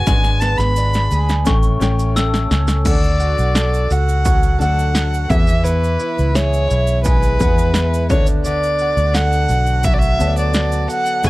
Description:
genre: acoustic pop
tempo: 86 BPM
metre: 4/4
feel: straight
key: unclear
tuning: A4 = 441 Hz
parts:
  - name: dark violin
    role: melody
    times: 0.0-11.3 s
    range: B4 to B5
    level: -20 LUFS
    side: equal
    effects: none
  - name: fingerpicked twelve-string acoustic guitar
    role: accompaniment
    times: 0.0-11.3 s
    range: F#2 to A4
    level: -24 LUFS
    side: right 3 dB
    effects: none
  - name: warm upright piano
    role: accompaniment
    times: 0.0-11.3 s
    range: A3 to G#5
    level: -27 LUFS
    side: left 5 dB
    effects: none
  - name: vintage muted fingered electric bass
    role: bass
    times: 0.0-11.3 s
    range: F#1 to E2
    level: -17 LUFS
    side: equal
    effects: none
  - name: punchy analog drum machine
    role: drums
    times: 0.1-11.3 s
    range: crash cymbal, kick drum, shaker, snare drum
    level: -18 LUFS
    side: equal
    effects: none
  - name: tube shaker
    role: percussion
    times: 0.1-11.3 s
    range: none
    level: -36 LUFS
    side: right 9 dB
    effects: none
  - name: glockenspiel with soft plastic mallets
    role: second line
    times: 1.5-2.8 s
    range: C#6 to E6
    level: -27 LUFS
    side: left 3 dB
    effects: digital delay
room: little or no reverb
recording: dark, warm production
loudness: -14 LUFS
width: side -19 dB against mid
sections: 0.0-2.9 A section; 2.9-11.3 B section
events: drum fill 0.1-2.9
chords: 0.1 G#dim; 1.5 A7; 2.9 D; 5.3 E; 8.1 Bm7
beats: | 0.07 0.77 1.47 2.17 | 2.86 3.56 4.26 4.96 | 5.66 6.35 7.05 7.75 | 8.45 9.15 9.85 10.55 | 11.25

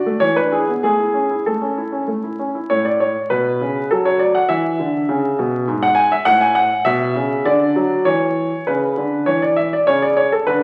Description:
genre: classical-period piano sonatina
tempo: 100 BPM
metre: 3/4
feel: straight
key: A major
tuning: A4 = 440 Hz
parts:
  - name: clear concert grand piano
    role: solo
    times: 0.0-10.6 s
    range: G#2 to G#5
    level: -18 LUFS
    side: equal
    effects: none
room: wet recital hall reverb, RT60 1.3 s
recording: very old 78 rpm record, vinyl crackle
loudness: -18 LUFS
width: mono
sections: 0.0-2.7 A section; 2.7-10.6 B section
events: none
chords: 0.2 E7; 0.8 A; 4.5 E7; 6.3 A; 7.5 D; 8.1 E5; 9.3 N.C.; 9.9 Bm9/C#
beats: 0.22 | 0.83 1.46 2.08 | 2.70 3.30 3.90 | 4.50 5.09 5.68 | 6.26 6.86 7.45 | 8.06 8.67 9.27 | 9.88 10.48

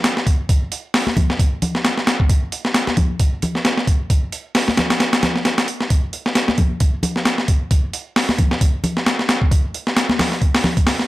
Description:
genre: breakbeat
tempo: 133 BPM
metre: 4/4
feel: swing 57% on 16ths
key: none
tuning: none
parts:
  - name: breakbeat sampler-style drum kit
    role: drums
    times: 0.0-11.1 s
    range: hi-hat, kick drum, snare drum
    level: -16 LUFS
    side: equal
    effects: small room ambience
  - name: congas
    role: percussion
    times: 1.1-10.7 s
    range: none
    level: -23 LUFS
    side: left 1 dB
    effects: none
room: digital ambience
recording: none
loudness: -16 LUFS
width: side -17 dB against mid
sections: 0.0-11.1 A section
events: none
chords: none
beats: 0.04 | 0.49 0.94 1.39 1.84 | 2.29 2.75 3.20 3.65 | 4.10 4.55 5.00 5.45 | 5.90 6.36 6.81 7.26 | 7.71 8.16 8.61 9.06 | 9.51 9.96 10.41 10.87

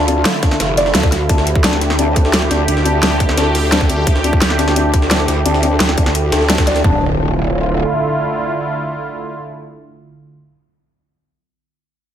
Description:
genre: dark technical drum and bass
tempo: 173 BPM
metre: 4/4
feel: straight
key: D minor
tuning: A4 = 440 Hz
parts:
  - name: sweeping resonant pad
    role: sustained chords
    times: 0.0-10.4 s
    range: D3 to G4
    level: -20 LUFS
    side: right 2 dB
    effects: chorus, sidechain pumping
  - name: felt-muted upright piano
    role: arpeggios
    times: 0.0-7.0 s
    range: D4 to D5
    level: -20 LUFS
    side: left 3 dB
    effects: sidechain pumping, ping-pong delay
  - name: growl bass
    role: bass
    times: 0.0-7.8 s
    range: D1 to D2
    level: -17 LUFS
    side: equal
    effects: chorus, tube saturation, sidechain pumping
  - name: breakbeat sampler-style drum kit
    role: drums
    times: 0.1-6.8 s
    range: hi-hat, snare drum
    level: -23 LUFS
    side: equal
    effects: high-pass filter on hats, high-pass filter on snare, high-pass filter on room
  - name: dubstep drum kit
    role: drums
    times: 0.1-6.7 s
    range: hi-hat, snare drum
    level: -18 LUFS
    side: equal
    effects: none
  - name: drum and bass drum kit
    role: drums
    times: 0.4-6.9 s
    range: kick drum, toms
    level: -15 LUFS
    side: equal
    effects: none
  - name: impact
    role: sound effects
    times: 6.8-11.1 s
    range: none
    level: -25 LUFS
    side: equal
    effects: none
room: light reverb, digital ambience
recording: none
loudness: -12 LUFS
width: side -10 dB against mid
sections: 0.0-6.8 A section; 6.8-9.6 B section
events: drop 0.0-6.8; band accent 6.5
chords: 0.0 Dm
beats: 0.25 0.60 0.95 | 1.29 1.64 1.99 2.33 | 2.68 3.03 3.38 3.72 | 4.07 4.42 4.76 5.11 | 5.46 5.80 6.15 6.50 | 6.84 7.19 7.54 7.88 | 8.23 8.58 8.92 9.27

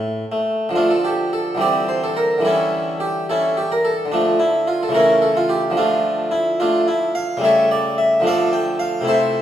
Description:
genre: classical, baroque-style suite movement for harpsichord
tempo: 72 BPM (dotted quarters)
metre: 6/8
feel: rubato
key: D minor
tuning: A4 = 440 Hz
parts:
  - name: harpsichord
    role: solo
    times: 0.0-9.4 s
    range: A2 to G5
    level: -16 LUFS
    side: equal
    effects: none
room: wet stone room reverb, RT60 1.3 s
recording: heard from further back in the room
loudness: -16 LUFS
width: side -11 dB against mid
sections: 0.8-9.4 A section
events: none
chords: 0.0 N.C.; 0.8 Dm; 1.6 C/D; 2.5 A7/D; 4.1 Dm; 5.0 A/C#; 5.8 Dm; 7.4 A7/C#; 8.3 Dm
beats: | 0.77 1.62 | 2.46 3.30 | 4.13 4.95 | 5.77 6.60 | 7.43 8.26 | 9.08

